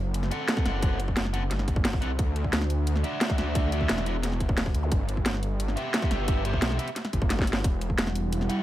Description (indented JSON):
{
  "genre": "dark technical drum and bass",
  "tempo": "176 BPM",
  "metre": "4/4",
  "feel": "straight",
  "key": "unclear",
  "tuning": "A4 = 440 Hz",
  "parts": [
    { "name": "wide detuned saw bass", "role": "bass", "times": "0.0-8.5 s", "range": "E1 to D2", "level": "-28 LUFS", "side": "equal", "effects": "chorus, overdrive, sidechain pumping" },
    { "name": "drum and bass drum kit", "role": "drums", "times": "0.1-8.6 s", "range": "hi-hat, snare drum", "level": "-29 LUFS", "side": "equal", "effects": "overdrive, small room reverb" },
    { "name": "distorted electric guitar", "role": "stabs", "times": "0.3-8.6 s", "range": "B3 to F#5", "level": "-33 LUFS", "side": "equal", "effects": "distortion, digital delay" },
    { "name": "electronic kick drum", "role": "drums", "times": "0.6-8.0 s", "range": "none", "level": "-27 LUFS", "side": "equal", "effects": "overdrive, small room reverb" },
    { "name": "zap", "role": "sound effects", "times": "4.8-4.9 s", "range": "none", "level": "-39 LUFS", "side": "equal", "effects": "none" },
    { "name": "dark analog pad", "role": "sustained chords", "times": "7.6-8.6 s", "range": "G3 to F#5", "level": "-31 LUFS", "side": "right 2 dB", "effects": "chorus, sidechain pumping" }
  ],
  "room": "little or no reverb",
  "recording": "none",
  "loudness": "-24 LUFS",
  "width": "side -14 dB against mid",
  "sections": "0.0-8.6 A section",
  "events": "drum fill 7.3-7.6",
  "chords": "0.0 F#dim; 2.2 Dadd9; 4.9 G6; 7.6 Emadd9"
}